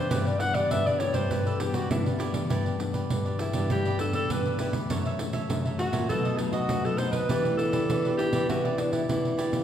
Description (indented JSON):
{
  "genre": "samba and choro",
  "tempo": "100 BPM",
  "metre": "4/4",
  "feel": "straight",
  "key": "G major",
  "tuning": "A4 = 439 Hz",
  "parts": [
    { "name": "breathy alto saxophone", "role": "melody", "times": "0.0-9.5 s", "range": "D4 to F#5", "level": "-30 LUFS", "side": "equal", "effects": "none" },
    { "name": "cavaquinho", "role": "accompaniment", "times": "0.0-9.6 s", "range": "D#4 to E5", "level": "-36 LUFS", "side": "right 3 dB", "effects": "none" },
    { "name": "nylon-string guitar", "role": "accompaniment", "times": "0.0-9.6 s", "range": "F#2 to G4", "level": "-33 LUFS", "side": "left 3 dB", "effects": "none" },
    { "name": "nylon-string guitar", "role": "bass", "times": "0.1-9.6 s", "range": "F#2 to E3", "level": "-30 LUFS", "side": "equal", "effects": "none" },
    { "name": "pandeiro", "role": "percussion", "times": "0.1-9.6 s", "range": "none", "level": "-30 LUFS", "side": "right 1 dB", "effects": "none" }
  ],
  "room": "wet recital hall reverb, RT60 1.5 s",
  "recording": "heard from further back in the room",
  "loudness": "-24 LUFS",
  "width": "side -10 dB against mid",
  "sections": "0.0-2.5 A section; 2.5-9.6 B section",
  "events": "alto saxophone solo 0.0-2.5",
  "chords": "0.0 G6; 4.9 F#m7; 6.1 B7; 7.3 Em7"
}